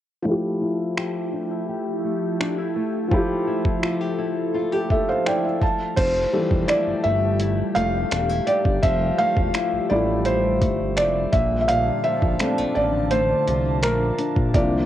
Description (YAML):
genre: contemporary R&B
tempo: 84 BPM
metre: 4/4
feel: straight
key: F major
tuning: A4 = 439 Hz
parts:
  - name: felt-muted upright piano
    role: accompaniment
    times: 0.2-14.9 s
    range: E3 to A5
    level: -22 LUFS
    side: equal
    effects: low-pass filter, cassette tape
  - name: glassy FM pad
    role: sustained chords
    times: 0.9-14.9 s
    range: D3 to A5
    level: -29 LUFS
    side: equal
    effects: ensemble chorus, built-in reverb, sidechain pumping, low-pass filter, cassette tape
  - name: nylon-string guitar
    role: arpeggios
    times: 0.3-14.9 s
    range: Bb2 to G4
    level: -27 LUFS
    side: left 4 dB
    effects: low-pass filter, cassette tape, tape echo
  - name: dusty soul sampler-style drum kit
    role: drums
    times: 1.0-14.7 s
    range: crash cymbal, finger snaps, hi-hat, kick drum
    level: -24 LUFS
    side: equal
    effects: none
  - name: fat analog bass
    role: bass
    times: 6.0-14.8 s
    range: E1 to C2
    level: -25 LUFS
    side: equal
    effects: none
room: light reverb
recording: home recording on cassette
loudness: -19 LUFS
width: side -12 dB against mid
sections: 0.3-6.0 A section; 6.0-14.9 B section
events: filter sweep 0.3-6.0; felt piano fill 4.5-6.0; felt piano solo 6.0-14.9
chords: 0.3 Fmaj9; 11.3 Bbmaj7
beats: | 0.26 0.97 1.69 2.40 | 3.12 3.83 4.54 5.26 | 5.97 6.69 7.40 8.12 | 8.83 9.54 10.26 10.97 | 11.69 12.40 13.12 13.83 | 14.54